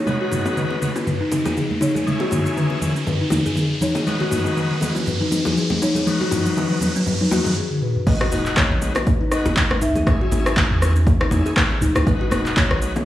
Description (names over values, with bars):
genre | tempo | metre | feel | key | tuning
afro house | 120 BPM | 4/4 | swing 56% on 16ths | G# minor | A4 = 440 Hz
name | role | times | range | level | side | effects
marimba with medium mallets | melody | 0.0-13.1 s | G#4 to E5 | -31 LUFS | left 1 dB | analog delay
kalimba | arpeggios | 0.0-13.1 s | D#3 to G#4 | -24 LUFS | left 1 dB | vintage 12-bit sampler grit, sidechain pumping, low-pass filter, analog delay
riser and impact | sound effects | 0.0-10.1 s | none | -29 LUFS | equal | none
bright tonewheel organ | stabs | 0.1-12.9 s | G#3 to B4 | -29 LUFS | left 2 dB | overdrive, fast rotary speaker, sidechain pumping, low-pass filter, analog delay
deep house drum kit | drums | 0.1-13.0 s | crash cymbal, handclaps, rim click, shaker, toms | -22 LUFS | equal | none
bongos | percussion | 0.1-13.0 s | none | -29 LUFS | left 2 dB | none
congas | percussion | 0.1-12.9 s | none | -29 LUFS | right 1 dB | none
warm 808-style bass | bass | 8.1-13.1 s | D#1 to E2 | -23 LUFS | equal | sidechain pumping
electronic kick drum | drums | 8.1-12.7 s | none | -20 LUFS | equal | none
room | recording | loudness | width
light reverb | dry, gritty hardware recording, studio reverb | -17 LUFS | side -13 dB against mid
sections
0.0-8.1 A section; 8.1-13.1 B section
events
build-up 0.0-8.1; drum fill 0.0-7.6, 7.7-8.1; riser 0.0-7.6; break 7.6-8.1; drop 8.1-13.1; impact 8.1-10.1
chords
0.0 G#m7; 2.1 C#m; 4.1 G#m7; 10.1 C#m; 12.1 G#m7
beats
| 0.07 0.57 1.07 1.57 | 2.07 2.57 3.07 3.57 | 4.07 4.57 5.07 5.57 | 6.07 6.57 7.07 7.57 | 8.07 8.57 9.07 9.57 | 10.07 10.57 11.07 11.57 | 12.07 12.57